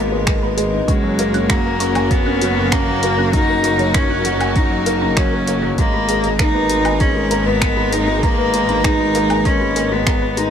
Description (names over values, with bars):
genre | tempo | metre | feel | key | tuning
piano and strings electronica | 98 BPM | 4/4 | straight | G# minor | A4 = 440 Hz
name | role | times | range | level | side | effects
rich cello | melody | 0.0-10.5 s | G#3 to D#4 | -19 LUFS | equal | none
clear symphonic string section | sustained chords | 0.0-10.5 s | G#3 to A#4 | -25 LUFS | equal | none
soft round pluck | arpeggios | 0.0-10.3 s | F#4 to F#6 | -29 LUFS | right 2 dB | analog chorus, sidechain pumping, tape echo
warm upright piano | riff | 0.0-10.5 s | F#3 to F#4 | -21 LUFS | left 2 dB | none
clear studio double bass section | bass | 0.0-10.5 s | F#1 to G#1 | -22 LUFS | right 1 dB | sidechain pumping
deep house drum kit | drums | 0.3-10.5 s | finger snaps, hi-hat, woodblock | -23 LUFS | equal | overdrive
electronic kick drum | drums | 0.3-10.2 s | none | -19 LUFS | equal | overdrive
room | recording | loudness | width
light reverb, small room reverb | none | -14 LUFS | side -8 dB against mid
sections
0.0-10.5 A section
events
none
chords
0.0 G#madd9; 0.9 F#; 5.8 G#madd9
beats
0.27 | 0.88 1.50 2.11 2.72 | 3.33 3.94 4.56 5.17 | 5.78 6.39 7.01 7.62 | 8.23 8.84 9.46 10.07